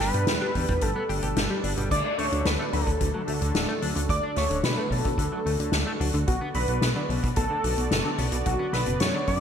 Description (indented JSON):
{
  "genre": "synthwave",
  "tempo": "110 BPM",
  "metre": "4/4",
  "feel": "straight",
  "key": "D major",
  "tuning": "A4 = 441 Hz",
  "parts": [
    { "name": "wide unison lead", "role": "melody", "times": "0.0-9.4 s", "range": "F#4 to D5", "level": "-30 LUFS", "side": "equal", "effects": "cassette tape, ping-pong delay" },
    { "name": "FM electric piano with soft pad layer", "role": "second line", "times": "0.0-9.4 s", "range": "F#5 to D6", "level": "-35 LUFS", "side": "right 2 dB", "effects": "chorus, phaser, digital delay" },
    { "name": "warm analog pad", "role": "sustained chords", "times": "0.0-9.4 s", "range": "D3 to D5", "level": "-34 LUFS", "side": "right 1 dB", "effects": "chorus, sidechain pumping" },
    { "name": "analog pluck", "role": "arpeggios", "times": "0.0-9.4 s", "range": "B2 to G4", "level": "-34 LUFS", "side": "left 2 dB", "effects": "chorus, digital delay" },
    { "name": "clean electric guitar", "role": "riff", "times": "0.0-9.4 s", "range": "B2 to G4", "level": "-36 LUFS", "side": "left 2 dB", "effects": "lush chorus, digital delay" },
    { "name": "chorused synth bass", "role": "bass", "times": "0.0-9.4 s", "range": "D1 to B2", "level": "-28 LUFS", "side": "equal", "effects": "none" },
    { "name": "soft-mallet drum kit", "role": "drums", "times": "0.0-9.4 s", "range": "crash cymbal, hi-hat, snare drum", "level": "-30 LUFS", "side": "left 2 dB", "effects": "gated reverb" },
    { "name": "kick drum", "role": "drums", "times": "0.6-9.4 s", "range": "none", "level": "-29 LUFS", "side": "equal", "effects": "none" }
  ],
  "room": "moderate plate reverb, RT60 2.5 s",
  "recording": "bright 1980s-style digital production",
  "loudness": "-23 LUFS",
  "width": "side -8 dB against mid",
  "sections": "0.0-9.4 A section",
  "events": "none",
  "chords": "0.0 Gadd9; 1.9 D; 6.3 Bmadd9",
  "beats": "0.28 0.82 1.37 | 1.91 2.46 3.00 3.55 | 4.09 4.64 5.19 5.73 | 6.28 6.82 7.37 7.91 | 8.46 9.00"
}